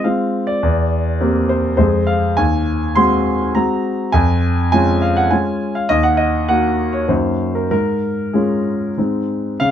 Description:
classical-period piano sonatina; 94-104 BPM; 3/4; rubato; Db major; A4 = 439 Hz
warm grand piano; solo; 0.0-9.7 s; Eb2 to C6; -14 LUFS; equal
light reverb; -15 LUFS; side -9 dB against mid
0.0-9.6 A section
0.0 Fm; 0.6 C7/E; 1.8 Fm; 2.4 Ab7/Eb; 4.1 Db/F; 5.9 Ebm; 7.1 Ebm/Gb; 7.7 Db/Ab; 9.0 Ab

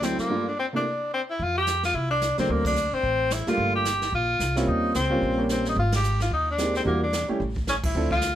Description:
jazz, small-group swing and bop; 220 BPM; 4/4; swing 59% on 8ths; F major; A4 = 440 Hz
clear tenor saxophone; melody; 0.0-8.4 s; Bb3 to G4; -25 LUFS; left 1 dB
warm grand piano; accompaniment; 0.0-8.1 s; G2 to A4; -27 LUFS; right 1 dB
upright bass; bass; 0.0-8.4 s; G1 to F2; -28 LUFS; equal
jazz brush drum kit; drums; 0.0-8.4 s; brushed snare drum, crash cymbal, hi-hat, kick drum, ride cymbal, snare drum; -32 LUFS; right 1 dB
moderate studio reverb, RT60 0.8 s; -22 LUFS; side -11 dB against mid
0.0-1.4 A section; 1.4-8.4 B section
band accent 2.6, 5.9, 7.8
0.3 Gm7; 0.8 N.C.; 1.4 F5; 2.5 D7b13; 3.6 Gm9; 4.7 Eb13; 5.8 Abmaj9; 6.9 Em7b5; 7.4 N.C.

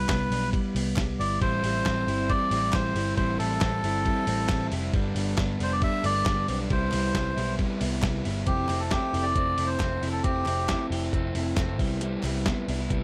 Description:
jangly indie pop; 136 BPM; 4/4; straight; C major; A4 = 440 Hz
melodica; melody; 0.0-10.9 s; G4 to E5; -31 LUFS; equal; slapback echo
clean electric guitar; arpeggios; 0.0-13.0 s; G3 to A4; -34 LUFS; equal; slapback echo
vintage muted picked electric bass; bass; 0.0-13.0 s; F1 to C2; -33 LUFS; equal
dusty soul sampler-style drum kit; drums; 0.1-13.0 s; hi-hat, kick drum, ride cymbal, snare drum; -33 LUFS; equal
group handclap; percussion; 0.1-12.6 s; -42 LUFS; equal
raw garage guitar; accompaniment; 1.4-13.0 s; G2 to E4; -36 LUFS; equal; overdrive, plate reverb
light reverb; -27 LUFS; mono
0.0-8.5 A section; 8.5-13.0 B section
0.0 Cmaj7; 1.4 Am7; 4.9 G; 6.7 Cmaj7; 8.5 Fmaj7; 11.8 Cmaj7

